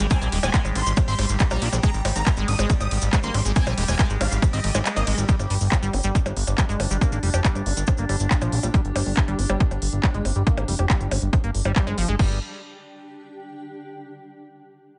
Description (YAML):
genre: psychedelic trance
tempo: 139 BPM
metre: 4/4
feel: straight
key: G phrygian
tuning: A4 = 438 Hz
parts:
  - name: vowel-sweep wobble bass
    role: second line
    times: 0.0-0.6 s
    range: C4 to D4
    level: -40 LUFS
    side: equal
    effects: none
  - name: overtone-sweeping drone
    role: sustained chords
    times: 0.0-12.2 s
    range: G3 to G4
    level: -36 LUFS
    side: equal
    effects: chorus, built-in reverb, phaser, sidechain pumping
  - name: liquid acid bass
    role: riff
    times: 0.0-12.4 s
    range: F3 to G4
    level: -33 LUFS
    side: equal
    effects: chorus, sidechain pumping, tape echo
  - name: fat analog bass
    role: bass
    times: 0.0-12.4 s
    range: Eb1 to Bb1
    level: -26 LUFS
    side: equal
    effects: none
  - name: techno drum kit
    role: drums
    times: 0.0-12.3 s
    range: crash cymbal, handclaps, hi-hat, percussion blips, ride cymbal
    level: -31 LUFS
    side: equal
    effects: none
  - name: supersaw stab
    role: melody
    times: 0.1-5.1 s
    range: Eb5 to Eb6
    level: -34 LUFS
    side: equal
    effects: phaser, sidechain pumping, delay
  - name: electronic kick drum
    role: drums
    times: 0.1-12.3 s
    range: none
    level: -23 LUFS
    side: equal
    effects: none
  - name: cabasa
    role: percussion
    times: 0.1-8.7 s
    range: none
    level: -36 LUFS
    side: equal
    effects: none
  - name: granular cloud pad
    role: texture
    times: 6.4-13.9 s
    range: D4 to G5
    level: -44 LUFS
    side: equal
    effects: built-in reverb, sidechain pumping
room: digital ambience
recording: nothing above 10.3 kHz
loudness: -22 LUFS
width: mono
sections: 0.0-5.3 A section; 5.3-12.2 B section; 12.2-13.9 C section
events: drop 0.0-5.3; kick drops out 4.9-5.3; filter sweep on analog synth bass 5.3-12.2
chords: 0.0 Ab5; 5.3 G5